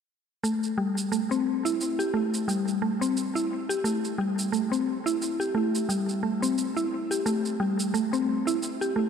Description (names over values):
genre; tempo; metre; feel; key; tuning
organic downtempo; 88 BPM; 4/4; swing 56% on 16ths; A minor; A4 = 440 Hz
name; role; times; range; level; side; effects
mallet-like synth pluck; arpeggios; 0.4-9.1 s; G3 to G4; -25 LUFS; equal; chorus, ping-pong delay, shimmer reverb
shaker; drums; 0.4-8.9 s; none; -37 LUFS; right 4 dB; none
room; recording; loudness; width
wet lush hall reverb, RT60 2.7 s; bright 1980s-style digital production; -25 LUFS; side -7 dB against mid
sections
0.4-9.1 A section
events
none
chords
none